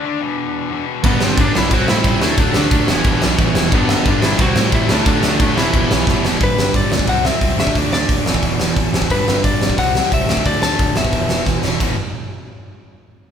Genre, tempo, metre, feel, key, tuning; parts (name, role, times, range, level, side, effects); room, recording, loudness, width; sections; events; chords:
punk rock; 179 BPM; 4/4; straight; E minor; A4 = 439 Hz
lightly driven lead guitar; melody; 0.0-11.4 s; B3 to A5; -22 LUFS; left 3 dB
distorted electric guitar; riff; 0.0-11.9 s; E2 to D4; -23 LUFS; left 7 dB; overdrive
high-gain distorted guitar; riff; 1.0-6.4 s; G2 to E4; -22 LUFS; equal; distortion
sludgy distorted guitar; riff; 1.0-11.9 s; E2 to D4; -22 LUFS; right 9 dB; overdrive
picked electric bass; bass; 1.0-12.0 s; E1 to A2; -24 LUFS; equal
big rock drum kit; drums; 1.0-11.9 s; crash cymbal, hi-hat, kick drum, snare drum; -17 LUFS; equal
moderate large studio reverb, RT60 1.1 s; band playing live in one room; -14 LUFS; side -8 dB against mid
0.0-6.4 A section; 6.4-11.8 B section; 11.8-13.2 C section
drum fill 6.1-6.4, 11.5-11.8
0.2 E5; 1.0 G; 1.7 C; 2.2 D; 2.9 Em; 3.7 G; 4.4 C; 4.9 D; 5.6 Em; 6.4 G; 7.1 C; 7.6 D5; 8.3 E5; 9.1 G; 9.8 C5; 10.3 D5; 11.0 E5